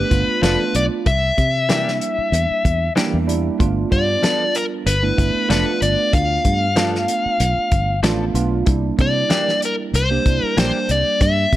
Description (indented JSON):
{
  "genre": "straight-eighth soul blues",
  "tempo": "95 BPM",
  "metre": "4/4",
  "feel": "swing 55% on 16ths",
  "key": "G mixolydian",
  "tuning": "A4 = 440 Hz",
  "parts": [
    { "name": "dark smooth lead guitar", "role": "melody", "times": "0.0-11.6 s", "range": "Bb4 to F5", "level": "-20 LUFS", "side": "left 2 dB", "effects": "overdrive" },
    { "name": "tine electric piano", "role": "accompaniment", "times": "0.0-11.6 s", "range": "G3 to F5", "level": "-23 LUFS", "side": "right 6 dB", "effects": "overdrive, analog chorus" },
    { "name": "fingered electric bass", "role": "bass", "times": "0.0-11.6 s", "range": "F1 to C3", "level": "-21 LUFS", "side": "equal", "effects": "none" },
    { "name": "warm soul drum kit", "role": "drums", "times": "0.1-11.6 s", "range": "hi-hat, kick drum, snare drum", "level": "-20 LUFS", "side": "equal", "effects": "none" },
    { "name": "direct-recorded clean electric guitar", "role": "stabs", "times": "0.4-10.8 s", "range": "E3 to A4", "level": "-27 LUFS", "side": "left 3 dB", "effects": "harmonic tremolo" }
  ],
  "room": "light reverb, small room ambience",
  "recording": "none",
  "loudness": "-16 LUFS",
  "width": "side -14 dB against mid",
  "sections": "0.0-11.6 A section",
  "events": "tine electric piano fill 7.7-8.7",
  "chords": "0.0 G9; 1.1 C9; 3.6 G9; 8.7 C9",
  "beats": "0.43 | 1.06 1.69 2.33 2.96 | 3.60 4.23 4.86 5.50 | 6.13 6.76 7.40 8.03 | 8.67 9.30 9.94 10.57 | 11.21"
}